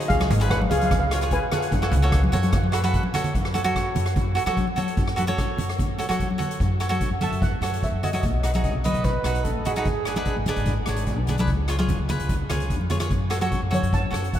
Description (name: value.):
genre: calypso.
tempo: 148 BPM.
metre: 4/4.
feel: straight.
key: F# harmonic minor, F# minor from 6.6 s.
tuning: A4 = 441 Hz.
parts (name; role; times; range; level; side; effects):
steel pan; melody; 0.0-3.0, 7.2-8.8, 13.7-14.4 s; G#4 to A5; -29 LUFS; equal; none.
cavaquinho; accompaniment; 0.0-14.4 s; D4 to E5; -28 LUFS; right 2 dB; none.
street-band drum kit; drums; 0.0-14.4 s; hi-hat, kick drum, rim click; -27 LUFS; equal; none.
upright bass; bass; 0.1-14.4 s; G#1 to F#3; -25 LUFS; equal; none.
congas; percussion; 0.2-13.8 s; none; -29 LUFS; equal; none.
mellow trumpet; second line; 8.8-10.5 s; G#4 to D#5; -33 LUFS; right 4 dB; none.
room: moderate huge ambient reverb, RT60 8.3 s.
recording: in a vast, echoing space.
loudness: -21 LUFS.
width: side -11 dB against mid.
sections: 0.0-3.3 A section; 3.3-6.6 B section; 6.6-14.4 C section.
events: drum fill 2.8-3.3, 12.8-13.1.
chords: 0.1 C#7; 1.7 F#m; 6.6 F#m7; 8.2 B; 9.9 G#dim; 11.5 C#7; 13.1 F#m.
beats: | 0.10 0.50 0.91 1.31 | 1.72 2.13 2.53 2.94 | 3.35 3.75 4.16 4.57 | 4.97 5.38 5.79 6.20 | 6.60 7.01 7.42 7.82 | 8.23 8.64 9.04 9.45 | 9.86 10.27 10.67 11.08 | 11.48 11.89 12.30 12.71 | 13.11 13.52 13.92 14.33.